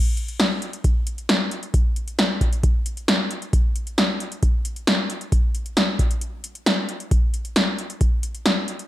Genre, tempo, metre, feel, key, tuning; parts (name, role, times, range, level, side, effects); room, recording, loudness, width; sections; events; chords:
pop; 134 BPM; 4/4; straight
electro analog drum machine; drums; 0.2-8.9 s; hi-hat, kick drum, snare drum; -20 LUFS; equal; overdrive, gated reverb
light reverb; -20 LUFS; side -14 dB against mid
0.0-8.9 A section